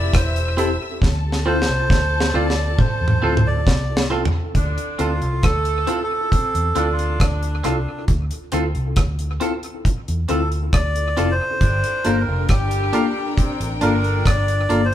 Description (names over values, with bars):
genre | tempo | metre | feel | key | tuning
lovers rock reggae | 68 BPM | 4/4 | straight | D minor | A4 = 440 Hz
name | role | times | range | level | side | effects
melodica | melody | 0.0-14.9 s | D4 to D5 | -24 LUFS | right 1 dB | none
clear saxophone section | second line | 0.0-14.7 s | C3 to A4 | -29 LUFS | equal | none
warm studio string section | second line | 0.0-4.5, 11.6-14.9 s | D4 to E6 | -30 LUFS | left 3 dB | none
vintage muted fingered electric bass | bass | 0.0-14.9 s | E1 to E2 | -22 LUFS | equal | none
deep reggae drum kit | drums | 0.1-14.9 s | hi-hat, kick drum, rim click, snare drum, toms | -20 LUFS | equal | none
mellow tine electric piano | accompaniment | 0.6-14.8 s | Bb3 to A4 | -26 LUFS | left 3 dB | medium stereo tremolo, dub echo
twangy electric guitar | stabs | 0.6-14.8 s | C4 to Bb4 | -27 LUFS | right 5 dB | none
room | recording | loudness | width
moderate large studio reverb, RT60 1.4 s | band playing live in one room | -17 LUFS | side -11 dB against mid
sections
0.0-4.5 A section; 4.5-14.9 B section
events
drum fill 1.0-4.5; melodica solo 4.5-14.9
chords
0.0 Fmaj7 (rootless); 1.0 Dm7; 11.6 Gm7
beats
0.13 | 1.02 1.90 2.78 3.67 | 4.55 5.43 6.31 7.20 | 8.08 8.96 9.85 10.73 | 11.61 12.49 13.37 14.26